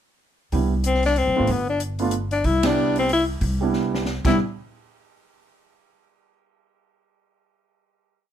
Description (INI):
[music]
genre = jazz, small-group swing and bop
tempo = 187 BPM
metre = 3/4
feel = swing 61% on 8ths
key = C major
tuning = A4 = 440 Hz
[part]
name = warm grand piano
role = accompaniment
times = 0.5-4.4 s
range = G3 to F4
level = -24 LUFS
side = right 6 dB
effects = none
[part]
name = upright bass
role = bass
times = 0.5-4.4 s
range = G1 to C2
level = -24 LUFS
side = equal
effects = none
[part]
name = open jazz drum kit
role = drums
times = 0.5-4.3 s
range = crash cymbal, hi-hat, kick drum, ride cymbal, snare drum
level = -29 LUFS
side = equal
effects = none
[part]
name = clear tenor saxophone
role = melody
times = 0.9-4.4 s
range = B3 to E4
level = -21 LUFS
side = left 4 dB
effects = none
[sound]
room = light reverb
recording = none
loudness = -19 LUFS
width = side -10 dB against mid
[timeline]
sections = 0.5-4.4 A section; 4.4-5.3 final hit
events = band accent 2.6; drum fill 3.7-4.4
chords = 0.5 Cmaj9; 1.5 G; 2.5 Cmaj9; 4.4 N.C.